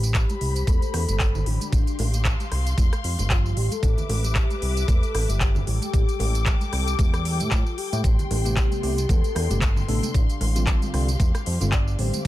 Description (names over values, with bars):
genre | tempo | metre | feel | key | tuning
nu-disco, nu disco | 114 BPM | 4/4 | swing 56% on 16ths | A minor | A4 = 440 Hz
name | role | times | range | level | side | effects
soft octave-layered synth lead | melody | 0.0-12.3 s | D4 to D5 | -32 LUFS | left 2 dB | chorus, phaser, ping-pong delay
dark symphonic string section | sustained chords | 0.0-12.3 s | B3 to D6 | -34 LUFS | left 6 dB | sidechain pumping
fat analog bass | bass | 0.0-12.3 s | G1 to A2 | -24 LUFS | equal | none
pop drum kit | drums | 0.0-12.3 s | handclaps, hi-hat, rim click, tambourine | -30 LUFS | equal | none
electronic kick drum | drums | 0.1-12.3 s | none | -21 LUFS | equal | none
congas and bongos | percussion | 0.3-12.2 s | none | -36 LUFS | right 2 dB | none
tine electric piano | accompaniment | 8.4-12.2 s | C3 to A4 | -30 LUFS | equal | sidechain pumping
room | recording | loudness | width
little or no reverb | none | -20 LUFS | side -15 dB against mid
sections
0.0-12.3 A section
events
none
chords
0.0 Am9; 1.7 G7sus4/A; 3.8 Cmaj9/A; 5.7 A7sus4; 8.0 Am9; 10.1 G7sus4/A